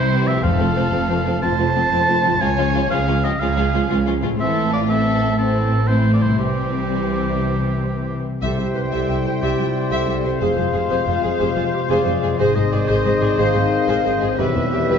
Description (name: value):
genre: cinematic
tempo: 121 BPM (dotted quarters)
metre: 12/8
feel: straight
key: unclear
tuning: A4 = 438 Hz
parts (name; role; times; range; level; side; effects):
- dark symphonic violin section; melody; 0.0-15.0 s; C4 to G5; -29 LUFS; left 4 dB; none
- rich symphonic violin section; second line; 0.0-15.0 s; C4 to E5; -28 LUFS; left 2 dB; none
- warm oboe; second line; 0.0-15.0 s; G4 to A5; -24 LUFS; right 2 dB; none
- dark symphonic viola section; accompaniment; 0.0-15.0 s; E3 to Ab4; -25 LUFS; right 1 dB; none
- concert harp; arpeggios; 0.0-15.0 s; E2 to F5; -27 LUFS; left 5 dB; none
- rich symphonic cello section; bass; 0.0-15.0 s; C2 to C3; -25 LUFS; right 2 dB; none
- warm symphonic double bass section; bass; 0.0-15.0 s; E1 to Db2; -25 LUFS; right 2 dB; none
- timpani; percussion; 0.4-0.9, 8.4-8.9 s; F2 to C3; -27 LUFS; left 2 dB; none
- silver concert flute; second line; 8.4-15.0 s; C5 to F5; -27 LUFS; left 7 dB; none
- warm clarinet; second line; 8.4-15.0 s; F4 to B4; -27 LUFS; left 1 dB; none
- mellow French horn section; sustained chords; 8.4-15.0 s; C4 to F4; -26 LUFS; left 3 dB; none
- mellow trombone section; sustained chords; 8.4-15.0 s; B2 to Ab3; -28 LUFS; right 2 dB; none
- clear trumpet; stabs; 8.4-15.0 s; C5 to E5; -27 LUFS; right 2 dB; none
room: wet recital hall reverb, RT60 1.3 s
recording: recorded in a church or concert hall, nothing above 7.4 kHz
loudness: -16 LUFS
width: side -7 dB against mid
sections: 0.0-8.4 A section; 8.4-15.0 B section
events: none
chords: 0.4 F; 2.4 Db; 4.4 Am; 6.4 C; 10.4 Fm; 12.4 Ab; 14.4 Em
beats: | 0.44 0.93 1.43 1.92 | 2.41 2.91 3.40 3.90 | 4.40 4.90 5.39 5.89 | 6.40 6.91 7.42 7.92 | 8.43 8.93 9.43 9.92 | 10.41 10.90 11.40 11.90 | 12.40 12.89 13.39 13.89 | 14.40 14.91